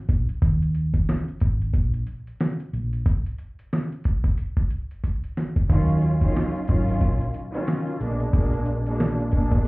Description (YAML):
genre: hip hop, boom-bap hip-hop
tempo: 91 BPM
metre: 4/4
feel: swing 59% on 16ths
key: Eb minor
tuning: A4 = 440 Hz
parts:
  - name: hollow-body short-scale fingered electric bass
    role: bass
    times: 0.1-9.7 s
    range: Ab1 to Eb2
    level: -23 LUFS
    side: equal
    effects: none
  - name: dusty soul sampler-style drum kit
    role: drums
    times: 0.1-9.7 s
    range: hi-hat, kick drum, rim click, snare drum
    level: -22 LUFS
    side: equal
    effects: none
  - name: warm studio string section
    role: accompaniment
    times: 5.7-9.7 s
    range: Cb3 to F4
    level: -26 LUFS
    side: right 1 dB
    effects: cassette tape, high-pass filter, low-pass filter, plate reverb
room: light reverb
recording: heard muffled through a wall, club reverb, vinyl crackle, EQ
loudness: -21 LUFS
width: side -24 dB against mid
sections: 0.0-9.7 A section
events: drum fill 5.0-5.7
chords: 0.4 Eb5; 2.7 N.C.; 5.7 Ebm9; 8.0 Bb7b9